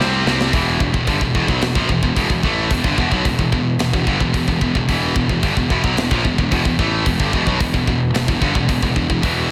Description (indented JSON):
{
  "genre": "heavy metal",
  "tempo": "110 BPM",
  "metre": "4/4",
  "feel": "straight",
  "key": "E minor",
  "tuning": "A4 = 440 Hz",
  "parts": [
    { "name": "heavy high-gain guitar", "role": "riff", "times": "0.0-9.5 s", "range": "E2 to C4", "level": "-23 LUFS", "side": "equal", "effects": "distortion, slapback echo" },
    { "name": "heavy high-gain guitar", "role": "riff", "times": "0.0-9.5 s", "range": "E2 to C4", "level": "-24 LUFS", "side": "equal", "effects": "distortion" },
    { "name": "fuzz picked electric bass", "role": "bass", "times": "0.0-9.5 s", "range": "E1 to C2", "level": "-25 LUFS", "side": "equal", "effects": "overdrive" },
    { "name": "tight metal drum kit", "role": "drums", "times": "0.0-9.4 s", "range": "hi-hat, kick drum, snare drum", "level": "-23 LUFS", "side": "equal", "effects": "none" }
  ],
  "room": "moderate lush hall reverb, RT60 2.4 s",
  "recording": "big arena sound",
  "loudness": "-18 LUFS",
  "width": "mono",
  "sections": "0.5-9.5 A section",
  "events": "drum fill 0.0-0.5",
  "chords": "0.0 C5; 0.5 Em"
}